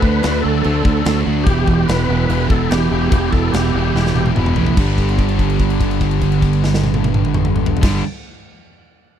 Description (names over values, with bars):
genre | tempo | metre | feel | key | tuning
classic rock | 146 BPM | 4/4 | straight | G major | A4 = 440 Hz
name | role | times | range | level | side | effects
overdriven tonewheel organ | melody | 0.0-4.3 s | G4 to B4 | -23 LUFS | equal | slow rotary speaker, chorus vibrato
crunchy overdriven guitar | riff | 0.0-8.0 s | E2 to D4 | -20 LUFS | right 10 dB | none
crunchy overdriven guitar | riff | 0.0-8.0 s | E2 to D4 | -23 LUFS | left 1 dB | phaser
distorted electric guitar | riff | 0.0-8.0 s | G2 to G4 | -25 LUFS | left 17 dB | overdrive
fingered electric bass | bass | 0.0-8.0 s | E1 to D2 | -19 LUFS | equal | none
big rock drum kit | drums | 0.0-7.9 s | crash cymbal, kick drum, snare drum, toms | -19 LUFS | equal | none
room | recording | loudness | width
little or no reverb | dry, close 1970s-style studio recording | -14 LUFS | side -9 dB against mid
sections
0.0-4.8 A section; 4.8-8.1 B section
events
drum fill 3.9-4.8; held note 4.8-7.8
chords
0.0 D; 1.5 Em; 4.8 G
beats
0.23 0.65 1.06 | 1.47 1.89 2.30 2.71 | 3.12 3.54 3.95 4.36 | 4.77 5.19 5.60 6.01 | 6.42 6.84 7.25 7.66